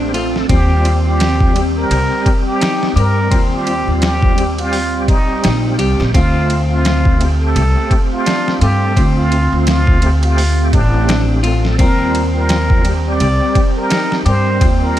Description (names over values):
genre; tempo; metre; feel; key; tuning
trip hop; 85 BPM; 4/4; swing 58% on 16ths; unclear; A4 = 441 Hz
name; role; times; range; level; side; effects
bright tonewheel organ; accompaniment; 0.0-15.0 s; G3 to Bb4; -21 LUFS; right 1 dB; chorus vibrato, fast rotary speaker, tremolo, vintage 12-bit sampler grit
warbly tape-like pad; sustained chords; 0.0-15.0 s; C4; -24 LUFS; right 1 dB; chorus, built-in reverb
electric guitar at the edge of break-up; arpeggios; 0.0-15.0 s; C4 to G4; -24 LUFS; left 4 dB; phaser, digital delay
upright bass; bass; 0.0-15.0 s; A1 to G2; -15 LUFS; equal; none
boom bap sampler-style drum kit; drums; 0.1-15.0 s; hi-hat, kick drum, ride cymbal, snare drum; -17 LUFS; equal; overdrive, studio reverb
trumpet with plunger mute; melody; 0.5-15.0 s; D4 to D5; -20 LUFS; equal; tape echo
room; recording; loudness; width
little or no reverb; none; -12 LUFS; side -12 dB against mid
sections
0.0-15.0 A section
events
none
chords
0.5 Eb6; 6.1 Dm7; 11.8 Eb6